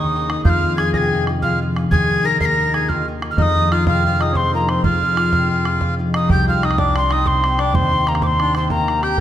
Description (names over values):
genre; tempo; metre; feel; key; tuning
celtic folk, Celtic slip jig; 124 BPM (dotted quarters); 9/8; straight; F minor; A4 = 436 Hz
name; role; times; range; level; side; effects
mellow hollow tin whistle; melody; 0.0-9.2 s; Bb5 to C7; -20 LUFS; right 2 dB; none
accordion; second line; 0.0-9.2 s; Bb3 to Bb4; -24 LUFS; left 6 dB; none
concert harp; accompaniment; 0.0-9.2 s; C3 to Bb4; -21 LUFS; left 1 dB; none
upright bass; bass; 0.0-9.2 s; C2 to F2; -23 LUFS; equal; none
bodhran; percussion; 0.3-9.2 s; none; -23 LUFS; right 2 dB; none
room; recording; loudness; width
wet recital hall reverb, RT60 1.8 s; none; -15 LUFS; side -11 dB against mid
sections
0.0-6.3 A section; 6.3-9.2 B section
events
none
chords
0.4 Fm7; 1.9 Ebsus4; 3.4 Fm7; 6.3 Cm; 7.7 Eb6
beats
| 0.45 0.94 1.43 | 1.92 2.41 2.89 | 3.38 3.87 4.36 | 4.84 5.33 5.81 | 6.30 6.78 7.26 | 7.75 8.23 8.71 | 9.19